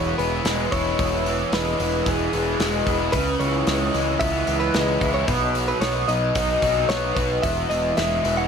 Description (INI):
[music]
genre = rock, shoegaze and dream pop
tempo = 112 BPM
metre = 4/4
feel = straight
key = E major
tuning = A4 = 439 Hz
[part]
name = direct-recorded clean electric guitar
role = melody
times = 0.0-8.5 s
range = G#4 to F#5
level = -26 LUFS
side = equal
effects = wide subtle chorus, digital delay
[part]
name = fuzz guitar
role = riff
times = 0.0-8.5 s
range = E2 to F#4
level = -23 LUFS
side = left 1 dB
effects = distortion, wide subtle chorus
[part]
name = growling picked electric bass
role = bass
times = 0.0-8.5 s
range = E1 to C#2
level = -27 LUFS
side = equal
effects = overdrive
[part]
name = loose indie drum kit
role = drums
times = 0.2-8.4 s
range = hi-hat, kick drum, snare drum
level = -28 LUFS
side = equal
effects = none
[sound]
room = moderate huge ambient reverb, RT60 4.6 s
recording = none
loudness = -19 LUFS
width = side -6 dB against mid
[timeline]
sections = 0.0-8.5 A section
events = none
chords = 0.0 E; 3.1 C#m7; 5.3 B; 7.4 E